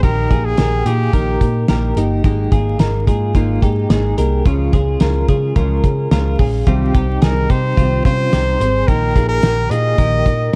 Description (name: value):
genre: jangly indie pop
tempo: 108 BPM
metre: 4/4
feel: straight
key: unclear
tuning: A4 = 437 Hz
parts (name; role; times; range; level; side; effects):
- clear trumpet; melody; 0.0-2.0, 6.7-10.6 s; G4 to Eb5; -22 LUFS; equal; none
- fingerpicked steel-string acoustic guitar; accompaniment; 0.0-10.6 s; Bb2 to Ab4; -24 LUFS; equal; none
- twelve-string electric guitar; arpeggios; 0.0-10.5 s; Bb3 to C5; -26 LUFS; equal; tremolo, tape echo
- vintage muted picked electric bass; bass; 0.0-10.5 s; G1 to Db3; -20 LUFS; equal; none
- cloth-damped thuddy drum kit; drums; 0.0-10.4 s; hi-hat, kick drum, snare drum; -19 LUFS; equal; none
room: light reverb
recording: dark, warm production, vinyl crackle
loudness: -16 LUFS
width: mono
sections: 0.0-10.6 A section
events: none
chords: 0.0 Eb/Bb; 2.2 Absus2; 4.5 Db; 6.7 Cm; 8.9 Eb/Bb